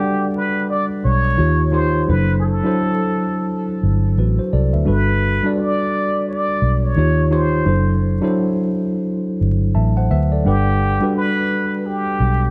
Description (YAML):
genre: lo-fi hip hop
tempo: 86 BPM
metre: 4/4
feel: swing 62% on 16ths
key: G major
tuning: A4 = 441 Hz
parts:
  - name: trumpet with plunger mute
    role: melody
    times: 0.0-12.5 s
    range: G4 to D5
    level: -24 LUFS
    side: equal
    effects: tape echo
  - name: mellow tine electric piano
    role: accompaniment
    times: 0.0-12.5 s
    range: Eb3 to A5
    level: -22 LUFS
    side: equal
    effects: none
  - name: vintage muted fingered electric bass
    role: bass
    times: 1.0-12.5 s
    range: F#1 to Eb2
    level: -19 LUFS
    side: equal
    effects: none
room: light reverb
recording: dark, warm production, vinyl crackle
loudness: -18 LUFS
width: mono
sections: 0.0-12.5 A section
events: none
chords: 0.0 Gmaj7; 1.4 Eb9; 2.1 D9/F#; 4.9 Gmaj7; 7.0 Eb9; 7.7 D9/F#; 10.4 Gmaj7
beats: 0.68 1.38 | 2.08 2.77 3.47 4.17 | 4.87 5.56 6.26 6.96 | 7.66 8.35 9.05 9.75 | 10.45 11.14 11.84